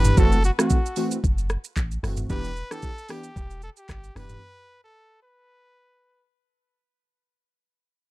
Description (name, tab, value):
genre	afrobeats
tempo	113 BPM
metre	4/4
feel	swing 55% on 16ths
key	E minor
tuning	A4 = 439 Hz
part	clear trumpet	melody	0.0-6.2 s	F#4 to B4	-32 LUFS	equal	ping-pong delay
part	warm analog keys	accompaniment	0.0-4.4 s	E3 to G4	-26 LUFS	right 1 dB	chorus
part	punchy sub bass	bass	0.0-4.4 s	E1 to A1	-25 LUFS	equal	none
part	afro-pop drum kit	drums	0.0-4.4 s	handclaps, hi-hat, kick drum, rim click, shaker, toms	-23 LUFS	equal	none
room	little or no reverb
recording	dark, warm production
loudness	-21 LUFS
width	side -19 dB against mid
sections	0.0-6.5 A section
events	fade-out 0.0-6.5; break 4.4-6.5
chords	0.2 F#m7b5; 2.3 Em7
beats	| 0.17 0.70 1.24 1.77 | 2.30 2.83 3.36 3.89 | 4.42 4.95 5.48 6.01